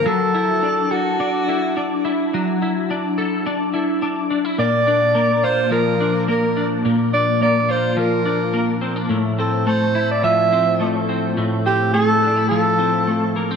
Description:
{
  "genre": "dream pop",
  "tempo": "106 BPM",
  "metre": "4/4",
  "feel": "straight",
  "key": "unclear",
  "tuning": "A4 = 439 Hz",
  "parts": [
    { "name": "clear alto saxophone", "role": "melody", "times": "0.0-13.3 s", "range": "F#4 to E5", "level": "-19 LUFS", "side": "right 1 dB", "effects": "digital delay" },
    { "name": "twelve-string electric guitar", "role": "arpeggios", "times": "0.0-13.6 s", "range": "A2 to A4", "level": "-19 LUFS", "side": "left 1 dB", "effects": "ensemble chorus, digital delay" }
  ],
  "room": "wet lush hall reverb, RT60 1.8 s, small room ambience",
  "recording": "dark, warm production",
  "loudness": "-16 LUFS",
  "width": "side -6 dB against mid",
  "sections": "0.0-13.6 A section",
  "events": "none",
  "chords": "0.1 Dadd9/F#; 4.6 Bb; 9.1 Fmaj7/A",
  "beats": "| 0.05 0.62 1.18 1.75 | 2.31 2.88 3.45 4.01 | 4.58 5.14 5.71 6.28 | 6.84 7.41 7.97 8.54 | 9.11 9.67 10.24 10.80 | 11.37 11.94 12.50 13.07"
}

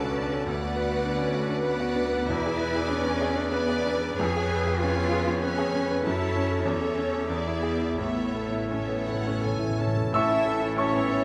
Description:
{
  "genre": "classical",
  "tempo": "82-106 BPM",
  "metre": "3/4",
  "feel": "rubato",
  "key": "A major",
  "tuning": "A4 = 439 Hz",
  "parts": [
    { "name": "clear baby grand piano", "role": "melody", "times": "0.0-11.2 s", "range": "B1 to E6", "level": "-29 LUFS", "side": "equal", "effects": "none" },
    { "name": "rich studio violin section", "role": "melody", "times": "0.0-11.2 s", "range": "C#5 to A5", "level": "-42 LUFS", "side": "equal", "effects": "none" },
    { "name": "clear studio violin section", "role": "second line", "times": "0.0-11.2 s", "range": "C#5 to E5", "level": "-38 LUFS", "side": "equal", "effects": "none" },
    { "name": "clear studio viola section", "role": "accompaniment", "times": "0.0-11.2 s", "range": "C#4 to C#5", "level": "-38 LUFS", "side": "equal", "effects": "none" },
    { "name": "rich studio double bass section", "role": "bass", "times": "0.0-11.2 s", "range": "A1 to F#2", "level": "-37 LUFS", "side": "equal", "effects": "none" },
    { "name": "warm studio cello section", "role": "bass", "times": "0.0-11.2 s", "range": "A2 to G#4", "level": "-34 LUFS", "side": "equal", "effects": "none" },
    { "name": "timpani", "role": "percussion", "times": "2.3-3.2, 8.0-11.0 s", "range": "E2 to A2", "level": "-37 LUFS", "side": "equal", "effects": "none" },
    { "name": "dark clarinet", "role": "second line", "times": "10.1-11.2 s", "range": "C#4", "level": "-38 LUFS", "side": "equal", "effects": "none" },
    { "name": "silver concert flute", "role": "second line", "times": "10.1-11.2 s", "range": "E5 to A5", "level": "-37 LUFS", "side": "equal", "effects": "none" },
    { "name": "warm oboe", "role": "second line", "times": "10.1-11.2 s", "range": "A4", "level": "-38 LUFS", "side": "equal", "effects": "none" },
    { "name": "clear bassoon", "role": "accompaniment", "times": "10.1-11.2 s", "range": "E3", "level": "-37 LUFS", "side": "equal", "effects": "none" },
    { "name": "mellow French horn section", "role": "sustained chords", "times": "10.1-11.2 s", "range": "C#4 to E4", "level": "-34 LUFS", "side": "equal", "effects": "none" }
  ],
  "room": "moderate scoring stage reverb, RT60 1.7 s",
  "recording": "none",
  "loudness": "-27 LUFS",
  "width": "mono",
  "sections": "0.0-10.1 A section; 10.1-11.2 A section",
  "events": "timpani fill 8.0-10.1",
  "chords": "0.5 Bm/D; 2.3 E7; 4.2 C#7/E#; 6.0 F#m7; 6.7 A/E; 7.3 E7; 8.0 A",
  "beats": "| 0.49 1.06 1.64 | 2.30 2.90 3.50 | 4.18 4.80 5.42 | 6.05 6.66 7.30 | 8.00 8.71 9.43 | 10.14 10.78"
}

